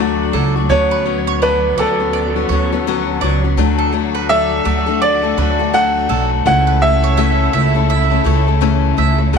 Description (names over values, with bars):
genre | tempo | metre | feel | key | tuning
pop | 83 BPM | 4/4 | swing 60% on 16ths | D major | A4 = 440 Hz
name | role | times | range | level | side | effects
bright upright piano | melody | 0.0-7.9 s | A4 to F#5 | -18 LUFS | right 2 dB | tape echo
picked steel-string acoustic guitar | accompaniment | 0.0-9.4 s | C#3 to A4 | -18 LUFS | left 15 dB | none
bright studio string section | sustained chords | 0.0-9.4 s | C#3 to F#4 | -25 LUFS | equal | none
upright bass | bass | 0.0-9.4 s | B1 to D2 | -17 LUFS | right 2 dB | none
mandolin | arpeggios | 0.3-9.2 s | A4 to E5 | -24 LUFS | right 14 dB | none
room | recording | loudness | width
studio ambience | 1960s-style stereo with parts hard left and right | -13 LUFS | side -6 dB against mid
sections
0.0-9.4 A section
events
none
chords
0.0 D; 0.7 Bmadd9/D; 3.6 D; 6.5 A/C#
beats
| 0.69 1.41 2.13 2.85 | 3.57 4.29 5.01 5.73 | 6.45 7.17 7.89 8.62 | 9.34